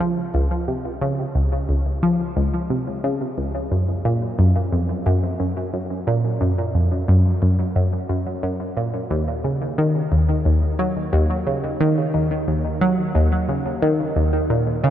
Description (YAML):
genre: ambient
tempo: 89 BPM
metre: 4/4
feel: straight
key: Eb minor from 9.1 s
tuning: A4 = 440 Hz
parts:
  - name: analog pluck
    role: riff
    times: 0.0-14.9 s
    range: Db2 to Gb3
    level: -18 LUFS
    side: equal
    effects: chorus, phaser, analog delay
room: moderate huge ambient reverb, RT60 8.2 s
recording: in a vast, echoing space, cassette tape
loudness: -18 LUFS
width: side -11 dB against mid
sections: 0.0-9.1 A section; 9.1-14.9 B section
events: filter sweep on synth arpeggio sound 0.0-9.1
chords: none